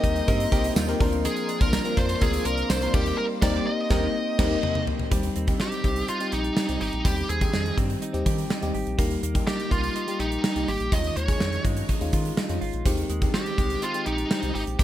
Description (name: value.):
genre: 1980s-style pop.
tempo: 124 BPM.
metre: 4/4.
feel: straight.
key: Eb major.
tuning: A4 = 441 Hz.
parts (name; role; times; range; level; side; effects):
bluesy overdriven lead guitar; melody; 0.0-14.8 s; Eb4 to Eb5; -29 LUFS; equal; distortion, digital delay.
direct-recorded clean electric guitar; second line; 0.0-1.1 s; Fb4 to Bb4; -37 LUFS; right 3 dB; tremolo, digital delay.
FM electric piano; accompaniment; 0.0-14.8 s; Eb3 to G5; -30 LUFS; left 4 dB; chorus.
granular cloud pad; sustained chords; 0.2-5.1 s; Bb4 to C6; -37 LUFS; right 1 dB; built-in reverb.
direct-recorded clean electric guitar; riff; 0.0-14.8 s; Eb3 to Bb4; -35 LUFS; right 6 dB; analog chorus, digital delay.
round analog bass; bass; 0.0-14.8 s; Ab1 to Eb3; -29 LUFS; equal; none.
gated 80s drum kit; drums; 0.0-14.8 s; crash cymbal, hi-hat, kick drum, snare drum, tambourine, toms; -25 LUFS; equal; none.
mellow synth brass; stabs; 3.4-4.6 s; Eb4 to Bb4; -34 LUFS; right 1 dB; chorus, digital delay.
room: light reverb.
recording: none.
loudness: -22 LUFS.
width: side -12 dB against mid.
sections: 0.0-5.1 A section; 5.1-14.8 B section.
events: band accent 3.2-5.1; drum fill 4.1-5.1.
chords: 0.0 Eb6; 1.0 Bbadd9; 2.9 Eb6; 5.1 Abmaj7 (rootless); 9.0 Eb; 10.9 Dbadd9/Eb; 12.9 Abmaj7.